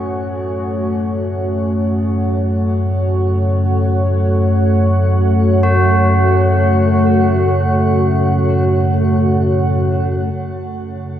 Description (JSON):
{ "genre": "dark ambient drone", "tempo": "free time", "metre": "none", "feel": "none", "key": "F# minor", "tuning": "A4 = 441 Hz", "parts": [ { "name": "deep dark ambient pad", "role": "sustained chords", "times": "0.0-11.2 s", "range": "A3 to F#5", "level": "-17 LUFS", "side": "left 1 dB", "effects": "chorus, built-in reverb, shimmer reverb" }, { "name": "tubular bells", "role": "arpeggios", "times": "0.0-11.2 s", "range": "C#4 to G#4", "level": "-24 LUFS", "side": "equal", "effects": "diffuse ambient delay, shimmer reverb" }, { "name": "deep rumbling drone", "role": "drone", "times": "0.0-11.2 s", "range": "F#2 to C#3", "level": "-16 LUFS", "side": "equal", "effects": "built-in reverb" }, { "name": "bronze singing bowl", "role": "texture", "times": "10.3-11.2 s", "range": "C#5", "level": "-46 LUFS", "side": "right 7 dB", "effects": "none" } ], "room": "wet huge ambient reverb, RT60 8.7 s", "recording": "none", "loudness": "-13 LUFS", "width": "side -10 dB against mid", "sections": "0.0-10.3 A section", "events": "fade-in on ambient pad 0.0-10.3", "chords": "0.0 F#m" }